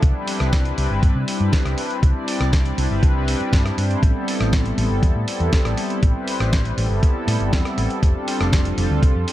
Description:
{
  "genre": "nu-disco, nu disco",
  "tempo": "120 BPM",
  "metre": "4/4",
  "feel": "straight",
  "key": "A minor",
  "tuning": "A4 = 441 Hz",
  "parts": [
    { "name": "warm analog pad", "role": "accompaniment", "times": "0.0-9.3 s", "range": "G3 to D5", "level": "-24 LUFS", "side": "left 1 dB", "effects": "analog chorus, sidechain pumping, slapback echo" },
    { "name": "hollow-body short-scale fingered electric bass", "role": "bass", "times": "0.0-9.2 s", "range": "F1 to C3", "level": "-22 LUFS", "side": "equal", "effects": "sidechain pumping" },
    { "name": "dusty soul sampler-style drum kit", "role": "drums", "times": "0.0-9.3 s", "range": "hi-hat, rim click, snare drum", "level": "-27 LUFS", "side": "equal", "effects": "none" },
    { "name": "electronic kick drum", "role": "drums", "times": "0.0-9.1 s", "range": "none", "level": "-17 LUFS", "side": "equal", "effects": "none" }
  ],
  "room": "little or no reverb",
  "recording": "dark, warm production",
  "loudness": "-17 LUFS",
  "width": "side -14 dB against mid",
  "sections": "0.0-9.3 A section",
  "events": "none",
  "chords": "0.0 Cmaj7; 4.0 Am7; 8.0 F69"
}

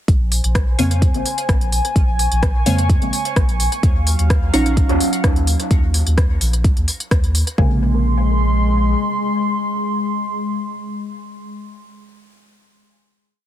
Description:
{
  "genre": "dub techno",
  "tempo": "128 BPM",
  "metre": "4/4",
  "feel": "straight",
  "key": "Bb minor",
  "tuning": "A4 = 440 Hz",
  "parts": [
    { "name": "warbly tape-like pad", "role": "sustained chords", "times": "0.4-11.5 s", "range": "Gb3 to Db6", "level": "-23 LUFS", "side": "left 1 dB", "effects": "chorus, built-in reverb, sidechain pumping" },
    { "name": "soft dub sub bass", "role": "bass", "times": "0.1-8.9 s", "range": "Bb1 to F2", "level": "-18 LUFS", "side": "equal", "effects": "sidechain pumping" },
    { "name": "deep house drum kit", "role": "drums", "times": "0.1-7.6 s", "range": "hi-hat, rim click", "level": "-24 LUFS", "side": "left 1 dB", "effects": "dub echo" },
    { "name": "electronic kick drum", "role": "drums", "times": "0.1-7.7 s", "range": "none", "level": "-16 LUFS", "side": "equal", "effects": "none" },
    { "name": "filtered dub chord stab", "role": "riff", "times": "0.8-4.7, 7.6-11.5 s", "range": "C5 to Db6", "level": "-31 LUFS", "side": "left 2 dB", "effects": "phaser, sidechain pumping, dub echo" },
    { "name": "deep mellow chord stab", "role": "stabs", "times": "0.8-11.5 s", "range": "C3 to F4", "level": "-22 LUFS", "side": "right 2 dB", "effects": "chorus, phaser, sidechain pumping, dub echo" }
  ],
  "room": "light reverb",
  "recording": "dense, heavily limited modern master",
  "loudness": "-15 LUFS",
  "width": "side -12 dB against mid",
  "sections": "0.1-7.6 groove; 7.6-11.3 final chord",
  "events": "filter sweep on synth stab 0.1-5.7",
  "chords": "0.1 Bbm9; 3.8 Ebm9; 7.6 Bbm9"
}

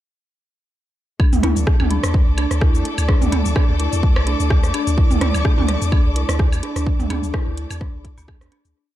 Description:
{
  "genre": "minimal techno",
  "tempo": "127 BPM",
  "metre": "4/4",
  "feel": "swing 56% on 16ths",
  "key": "unclear",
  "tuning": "A4 = 438 Hz",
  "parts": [
    { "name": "dark detuned synth bell", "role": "riff", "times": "1.2-8.6 s", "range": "D4 to E4", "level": "-27 LUFS", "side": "left 1 dB", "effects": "chorus, phaser, sidechain pumping, dub echo" },
    { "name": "electronic kick drum", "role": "drums", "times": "1.2-8.4 s", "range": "none", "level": "-17 LUFS", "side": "equal", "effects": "none" },
    { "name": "organic electronic drum kit", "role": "percussion", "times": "1.2-8.6 s", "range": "rim click, toms, woodblock", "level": "-24 LUFS", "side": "right 3 dB", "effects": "tape echo" },
    { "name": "warm studio string section", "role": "texture", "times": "1.2-8.8 s", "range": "A3 to D6", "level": "-28 LUFS", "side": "left 2 dB", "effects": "sidechain pumping" },
    { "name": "punchy sub bass", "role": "bass", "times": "1.3-8.7 s", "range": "C2 to E2", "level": "-21 LUFS", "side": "equal", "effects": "sidechain pumping" },
    { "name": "house drum kit", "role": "drums", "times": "1.3-8.7 s", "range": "hi-hat, rim click, shaker", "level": "-28 LUFS", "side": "left 1 dB", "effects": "none" }
  ],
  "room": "digital ambience",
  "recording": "dark, warm production",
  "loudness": "-16 LUFS",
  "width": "side -13 dB against mid",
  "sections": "1.2-8.8 drop",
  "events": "drop 1.2-8.8; fade-out 6.2-8.8",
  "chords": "1.2 D5"
}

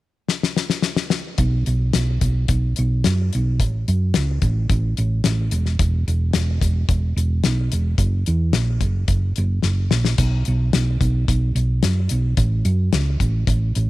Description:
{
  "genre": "classic rock",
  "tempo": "109 BPM",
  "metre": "4/4",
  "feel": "straight",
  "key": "unclear",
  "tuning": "A4 = 441 Hz",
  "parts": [
    { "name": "damped 70s drum kit", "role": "drums", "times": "0.3-13.9 s", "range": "hi-hat, kick drum, snare drum, splash cymbal", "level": "-22 LUFS", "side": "left 2 dB", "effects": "none" },
    { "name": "hollow-body short-scale fingered electric bass", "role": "bass", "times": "1.4-13.9 s", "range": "E1 to F#2", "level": "-18 LUFS", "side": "right 1 dB", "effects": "none" }
  ],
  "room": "little or no reverb",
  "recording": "1960s-style stereo",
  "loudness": "-18 LUFS",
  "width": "side -17 dB against mid",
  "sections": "0.0-1.4 A section; 1.4-13.9 B section",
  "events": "drum fill 0.3-1.4, 9.6-10.2",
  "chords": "none"
}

